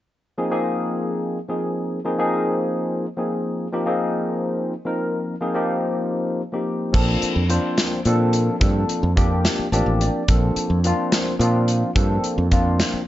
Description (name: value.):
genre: electric jazz fusion.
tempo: 72 BPM (dotted quarters).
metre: 6/8.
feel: straight.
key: Bb major from 6.9 s.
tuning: A4 = 440 Hz.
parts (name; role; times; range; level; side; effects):
barky tine electric piano; accompaniment; 0.4-13.0 s; F3 to A5; -22 LUFS; left 1 dB; overdrive, lush chorus.
modern bright fingered electric bass; bass; 6.9-13.0 s; A1 to Bb2; -20 LUFS; equal; none.
modern studio drum kit; drums; 6.9-12.9 s; crash cymbal, hi-hat, kick drum, snare drum; -21 LUFS; equal; none.
room: light reverb.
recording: nothing above 7.7 kHz.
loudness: -19 LUFS.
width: side -14 dB against mid.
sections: 0.2-6.9 A section; 6.9-13.1 B section.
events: tine electric piano fill 9.5-10.3.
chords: 0.2 Bb9sus4; 6.9 Bbmaj9.